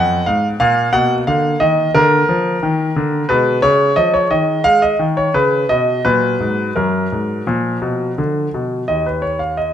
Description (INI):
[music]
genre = classical-period piano sonatina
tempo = 87 BPM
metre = 4/4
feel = uneven beats, rubato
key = unclear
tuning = A4 = 444 Hz
[part]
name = clear grand piano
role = solo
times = 0.0-9.7 s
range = Eb2 to Gb5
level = -14 LUFS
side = equal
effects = none
[sound]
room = moderate recital hall reverb, RT60 1.3 s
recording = close, detailed microphones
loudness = -14 LUFS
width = side -9 dB against mid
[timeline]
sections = 0.0-8.9 A section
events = none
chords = 0.0 Fdim; 0.6 Bb; 3.3 Abm/Cb; 6.1 Gbadd9; 7.5 Bb; 8.9 N.C.